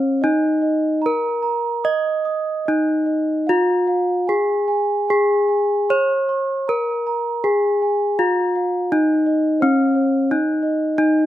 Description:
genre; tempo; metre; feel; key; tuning
gamelan; 74-90 BPM; 4/4; straight; Eb slendro; A4 = 440 Hz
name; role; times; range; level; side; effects
gamelan-type bronze metallophone; melody; 0.0-11.3 s; Db4-40c to Eb5; -17 LUFS; left 1 dB; none
gamelan-type bronze metallophone; arpeggios; 0.0-11.3 s; Db5-40c to Eb6; -25 LUFS; right 5 dB; slapback echo
room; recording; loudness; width
little or no reverb; recorded outdoors, with no room sound; -17 LUFS; side -13 dB against mid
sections
0.0-11.0 A section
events
none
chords
none

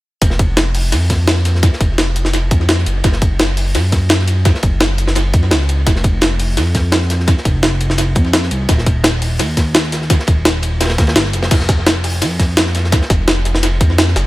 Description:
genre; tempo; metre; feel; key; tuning
liquid drum and bass; 170 BPM; 4/4; straight; unclear; A4 = 440 Hz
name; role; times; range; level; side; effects
smooth synth bass; bass; 0.2-14.3 s; Eb1 to Gb2; -16 LUFS; equal; none
crunchy breakbeat drum kit; drums; 0.2-14.2 s; hi-hat, ride cymbal, snare drum; -23 LUFS; equal; high-pass filter on cymbals, studio reverb, high-pass filter on hats, high-pass filter on snare, high-pass filter on room, tape echo
electronic kick drum; drums; 0.2-13.9 s; none; -14 LUFS; equal; overdrive, studio reverb
jungle sampler-style drum kit; drums; 0.2-14.2 s; crash cymbal, hi-hat, snare drum; -16 LUFS; equal; studio reverb, tape echo
room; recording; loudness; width
studio reverb; echo-heavy mix; -12 LUFS; side -18 dB against mid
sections
0.2-14.3 A section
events
kick drops out 11.2-11.5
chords
none

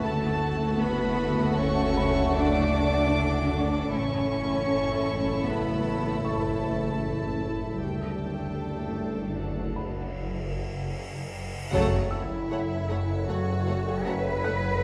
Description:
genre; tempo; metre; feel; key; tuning
cinematic, suspense film score; 77 BPM; 5/4; straight; unclear; A4 = 440 Hz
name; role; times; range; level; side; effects
warm studio violin section; melody; 0.0-14.8 s; E5 to D6; -39 LUFS; equal; none
clear studio violin section; second line; 0.0-14.5 s; D4 to F#5; -38 LUFS; equal; none
dark clarinet; second line; 0.0-10.2 s; F#4 to D5; -36 LUFS; equal; none
dark studio viola section; accompaniment; 0.0-14.5 s; A3 to A4; -39 LUFS; equal; none
clear trombone section; sustained chords; 0.0-14.3 s; A2 to A3; -39 LUFS; equal; none
icy glass pad; sustained chords; 0.0-14.8 s; A4 to A5; -42 LUFS; equal; chorus, built-in reverb
mellow French horn section; sustained chords; 0.0-14.3 s; A3 to F#4; -39 LUFS; equal; none
dark studio double bass section; bass; 0.0-14.7 s; A1 to F#2; -34 LUFS; equal; none
warm studio cello section; bass; 0.0-14.8 s; F#3 to B4; -33 LUFS; equal; none
swarming drone; drone; 0.0-14.8 s; F#1; -35 LUFS; equal; built-in reverb
felt-muted upright piano; texture; 0.0-14.8 s; B5 to F#6; -46 LUFS; equal; none
cymbal swell and impact; sound effects; 10.5-14.8 s; none; -38 LUFS; equal; none
room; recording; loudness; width
moderate scoring stage reverb, RT60 1.9 s; dark, warm production; -27 LUFS; mono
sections
0.0-11.7 A section; 11.7-14.8 B section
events
break 10.2-11.7; cymbal swell 10.5-11.7; band accent 11.7-12.5; impact 11.7-14.8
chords
0.0 D/F#; 3.9 A; 7.8 D/F#; 11.7 F#m

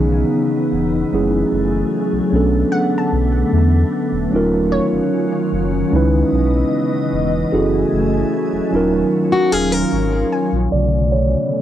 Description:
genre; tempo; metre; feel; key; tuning
R&B; 75 BPM; 4/4; straight; Eb phrygian; A4 = 440 Hz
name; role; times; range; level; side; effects
mellow tine electric piano; accompaniment; 0.0-11.6 s; C#3 to D5; -18 LUFS; right 2 dB; slow stereo tremolo, cassette tape
glassy FM pad; sustained chords; 0.0-11.6 s; B2 to Ab5; -20 LUFS; left 2 dB; ensemble chorus, built-in reverb, cassette tape
sub bass with octave; bass; 0.0-11.4 s; Eb1 to Fb2; -19 LUFS; equal; none
glassy wavetable pluck; texture; 0.0-11.1 s; Db5 to A5; -28 LUFS; right 1 dB; chorus, cassette tape, analog delay
fingerpicked plugged-in steel-string acoustic guitar; arpeggios; 9.3-10.7 s; Gb4 to Bb4; -19 LUFS; left 3 dB; cassette tape, analog delay
room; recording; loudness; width
light reverb; home recording on cassette, low-pass filter; -14 LUFS; side -11 dB against mid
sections
0.0-10.7 A section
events
none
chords
0.0 Dbm9; 1.1 Gbm9; 2.3 Bm9; 4.3 Ebm9; 5.9 Dbm9; 7.5 Gbm9; 8.7 Ebm9; 10.7 Bm9

